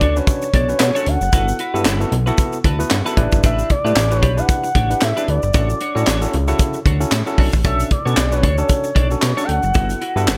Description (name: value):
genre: early-eighties boogie funk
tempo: 114 BPM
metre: 4/4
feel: swing 56% on 16ths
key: B minor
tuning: A4 = 443 Hz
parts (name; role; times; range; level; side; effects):
- expressive portamento lead; melody; 0.0-10.4 s; C#5 to G5; -24 LUFS; equal; chorus
- barky tine electric piano; accompaniment; 0.0-10.3 s; C#3 to A5; -27 LUFS; equal; none
- clean electric guitar; riff; 0.0-10.4 s; D4 to D5; -29 LUFS; equal; analog chorus
- fat analog bass; bass; 0.0-10.4 s; F#1 to B2; -22 LUFS; equal; none
- tight funk drum kit; drums; 0.0-10.4 s; handclaps, hi-hat, kick drum, snare drum; -20 LUFS; equal; gated reverb
- egg shaker; percussion; 0.2-10.4 s; none; -36 LUFS; equal; none
room: little or no reverb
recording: none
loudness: -17 LUFS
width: mono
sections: 0.0-10.4 A section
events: tine electric piano fill 2.4-3.4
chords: 0.0 Bm9; 1.3 Gmaj13; 3.2 A9sus4; 5.5 Dmaj7/A; 7.6 Bm9; 9.8 Gmaj13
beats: 0.28 0.81 | 1.33 1.86 2.38 2.91 | 3.44 3.96 4.49 5.02 | 5.54 6.07 6.60 7.12 | 7.65 8.18 8.70 9.23 | 9.75 10.28